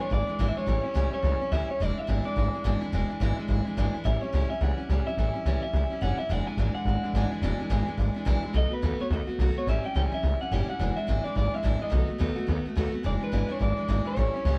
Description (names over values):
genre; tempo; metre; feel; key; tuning
rockabilly; 213 BPM; 4/4; swing 60% on 8ths; E mixolydian; A4 = 436 Hz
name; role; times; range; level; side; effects
electric guitar through a small old amp; melody; 0.0-14.6 s; B4 to G#5; -35 LUFS; equal; none
picked steel-string acoustic guitar; accompaniment; 0.0-14.6 s; E2 to F#4; -33 LUFS; equal; none
upright bass; bass; 0.0-14.6 s; E1 to D#2; -29 LUFS; equal; none
room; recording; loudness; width
light reverb; band playing live in one room; -27 LUFS; mono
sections
0.0-13.0 A section; 13.0-14.6 A section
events
none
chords
0.0 E7; 0.7 A7; 1.8 E7; 4.1 A7; 6.3 E7; 8.5 B7; 9.7 A7; 10.8 E7; 11.9 B7; 13.0 E7